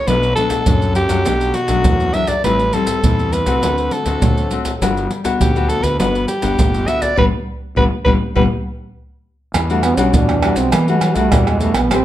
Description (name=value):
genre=samba and choro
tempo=102 BPM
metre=4/4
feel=straight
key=G major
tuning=A4 = 438 Hz
part: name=growling soprano saxophone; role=melody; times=0.0-8.4 s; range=F#4 to E5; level=-19 LUFS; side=equal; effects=none
part: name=nylon-string guitar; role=accompaniment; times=0.0-12.0 s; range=F#2 to B4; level=-20 LUFS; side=left 5 dB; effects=none
part: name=fuzz fingered electric bass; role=bass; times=0.1-12.0 s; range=G1 to E3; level=-21 LUFS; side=equal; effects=overdrive
part: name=maracas, surdo, pandeiro and tamborim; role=percussion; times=0.1-12.0 s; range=none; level=-18 LUFS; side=right 1 dB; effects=none
part: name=warm trombone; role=second line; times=9.7-12.0 s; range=F#3 to D4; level=-18 LUFS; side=right 4 dB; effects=none
room=moderate large studio reverb, RT60 0.9 s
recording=dark, warm production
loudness=-14 LUFS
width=side -13 dB against mid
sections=0.0-9.5 A section; 9.5-12.0 B section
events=band accent 7.2-9.5; drum fill 9.0-9.5; trombone solo 9.5-12.0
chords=0.1 Bm7; 2.4 Am7; 3.6 D7; 4.8 Gmaj7; 9.5 Em9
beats=| 0.08 0.67 1.26 1.86 | 2.45 3.04 3.63 4.22 | 4.81 5.40 6.00 6.59 | 7.18 7.77 8.36 8.95 | 9.54 10.13 10.73 11.32 | 11.91